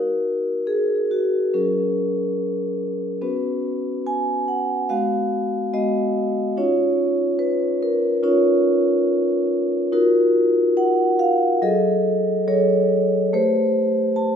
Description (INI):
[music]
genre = classical, contemporary piece for solo vibraphone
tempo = 71 BPM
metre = 4/4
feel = rubato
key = unclear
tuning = A4 = 445 Hz
[part]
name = vibraphone with medium mallets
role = solo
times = 0.0-14.4 s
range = F#3 to A5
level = -18 LUFS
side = equal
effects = none
[sound]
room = moderate scoring stage reverb, RT60 1.7 s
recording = minimal, uncompressed stereo recording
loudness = -18 LUFS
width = side -8 dB against mid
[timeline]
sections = 0.0-14.4 A section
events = none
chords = 0.0 D#m; 1.5 F#add9; 3.2 Bsus2; 4.9 G#m7; 6.6 C#add9; 9.9 D#madd9; 11.6 F#madd9; 13.3 Am9